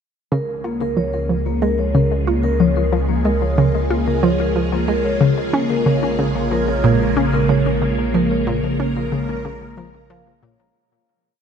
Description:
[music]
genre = ambient, sequencer-driven space music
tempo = 92 BPM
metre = 4/4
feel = straight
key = Bb minor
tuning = A4 = 439 Hz
[part]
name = phased string machine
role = sustained chords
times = 0.3-10.7 s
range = Db3 to Bb4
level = -23 LUFS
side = right 1 dB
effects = ensemble chorus, phaser
[part]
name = vibraphone with medium mallets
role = arpeggios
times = 0.3-10.7 s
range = Bb3 to Bb5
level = -23 LUFS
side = left 1 dB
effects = auto-pan, ping-pong delay
[part]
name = analog pluck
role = riff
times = 0.3-10.6 s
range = Bb2 to F4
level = -20 LUFS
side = equal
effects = chorus, ping-pong delay
[part]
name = warm sub bass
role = bass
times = 0.3-10.7 s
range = Bb1 to Db2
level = -24 LUFS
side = equal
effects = none
[sound]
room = wet huge ambient reverb, RT60 7.3 s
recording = in a vast, echoing space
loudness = -16 LUFS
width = side -7 dB against mid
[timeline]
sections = 0.3-10.8 A section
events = fade-in on string machine 0.3-10.8; filter sweep on synth arpeggio sound 0.3-10.8; fade-out 7.3-10.8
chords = 0.3 Db; 5.5 Bbm7

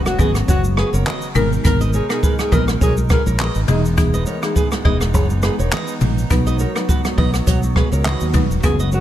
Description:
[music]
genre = afrobeats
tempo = 103 BPM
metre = 4/4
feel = swing 55% on 16ths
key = unclear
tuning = A4 = 440 Hz
[part]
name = buzzing marimba with hard mallets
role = accompaniment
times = 0.0-9.0 s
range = E3 to B4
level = -24 LUFS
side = left 3 dB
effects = none
[part]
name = hollow soft pad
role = sustained chords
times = 0.0-9.0 s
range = B2 to A#4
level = -28 LUFS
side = right 1 dB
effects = chorus
[part]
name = impact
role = sound effects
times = 0.0-1.6 s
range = none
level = -34 LUFS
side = equal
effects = none
[part]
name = breathy alto saxophone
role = melody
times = 0.1-3.8, 8.6-9.0 s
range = D#4 to A#4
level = -24 LUFS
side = equal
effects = ping-pong delay
[part]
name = jazz brush drum kit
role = drums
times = 0.1-9.0 s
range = handclaps, hi-hat, kick drum, rim click, shaker, toms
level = -19 LUFS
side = equal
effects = none
[part]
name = congas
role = percussion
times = 0.1-9.0 s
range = none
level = -29 LUFS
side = right 2 dB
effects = none
[part]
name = flamenco guitar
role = riff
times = 0.2-9.0 s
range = F#4 to D#5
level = -28 LUFS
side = right 3 dB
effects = ping-pong delay
[part]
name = fingered electric bass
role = bass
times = 0.2-9.0 s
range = E1 to D#2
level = -18 LUFS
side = equal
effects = none
[sound]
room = studio reverb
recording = none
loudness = -15 LUFS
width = side -12 dB against mid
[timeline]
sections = 0.0-9.0 A section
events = impact 0.0-1.6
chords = 0.0 F#sus4; 1.4 G#madd9; 3.7 Emaj7

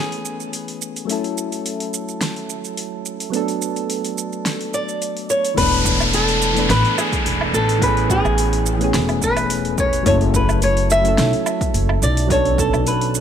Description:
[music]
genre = sunset chillout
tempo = 107 BPM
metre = 4/4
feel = swing 53% on 16ths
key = A major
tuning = A4 = 440 Hz
[part]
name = flamenco guitar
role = melody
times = 0.0-0.8, 4.7-13.2 s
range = G#4 to E5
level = -20 LUFS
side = equal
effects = vintage 12-bit sampler grit, ping-pong delay
[part]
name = soft electric-piano-like synth keys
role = accompaniment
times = 0.0-13.2 s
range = E3 to B4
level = -23 LUFS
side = moving between left 9 dB and right 9 dB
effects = chorus, auto-pan
[part]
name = deep house drum kit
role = drums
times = 0.1-13.2 s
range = hi-hat, shaker, snare drum, woodblock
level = -25 LUFS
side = right 2 dB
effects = overdrive
[part]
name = upright bass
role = bass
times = 5.6-13.2 s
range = E1 to B1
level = -20 LUFS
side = equal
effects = none
[part]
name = electronic kick drum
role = drums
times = 5.6-12.7 s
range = none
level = -24 LUFS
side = equal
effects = overdrive
[part]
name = downlifter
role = sound effects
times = 5.6-10.1 s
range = none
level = -23 LUFS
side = equal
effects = none
[sound]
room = light reverb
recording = none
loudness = -16 LUFS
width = side -8 dB against mid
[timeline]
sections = 0.0-5.6 A section; 5.6-13.2 B section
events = filter sweep on synth keys 0.0-5.6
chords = 0.0 Amaj9; 1.1 F#m7; 3.3 Bm7; 5.6 E7sus4; 7.8 Amaj9; 10.1 F#m7; 12.3 Bm9

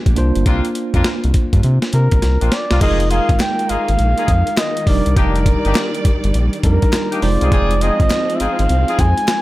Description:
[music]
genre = R&B, new jack swing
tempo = 102 BPM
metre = 4/4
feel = swing 64% on 16ths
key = unclear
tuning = A4 = 440 Hz
[part]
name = bell-like tine electric piano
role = accompaniment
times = 0.0-9.4 s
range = G3 to C5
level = -23 LUFS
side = right 2 dB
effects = medium stereo tremolo
[part]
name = round analog bass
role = bass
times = 0.1-9.1 s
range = F1 to C3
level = -16 LUFS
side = equal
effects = none
[part]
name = breakbeat sampler-style drum kit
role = drums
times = 0.1-9.4 s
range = crash cymbal, hi-hat, kick drum, snare drum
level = -17 LUFS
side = equal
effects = none
[part]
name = warm horn section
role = stabs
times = 0.5-9.0 s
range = Bb3 to Ab4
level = -25 LUFS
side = left 2 dB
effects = digital delay
[part]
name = trumpet with bucket mute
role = melody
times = 1.9-9.4 s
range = Bb4 to Ab5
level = -20 LUFS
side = equal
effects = none
[part]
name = warm studio string section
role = sustained chords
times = 2.8-9.4 s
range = Eb3 to D5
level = -26 LUFS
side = equal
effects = none
[part]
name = group handclap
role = percussion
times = 3.4-9.4 s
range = none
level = -33 LUFS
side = left 5 dB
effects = none
[sound]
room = small room ambience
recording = none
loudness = -13 LUFS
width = side -17 dB against mid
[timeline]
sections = 0.0-2.8 A section; 2.8-9.4 B section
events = drum fill 2.2-2.8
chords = 0.2 C9sus4; 2.8 Bb7sus4/F; 4.9 Ebmaj7/F; 7.2 Ab6/F

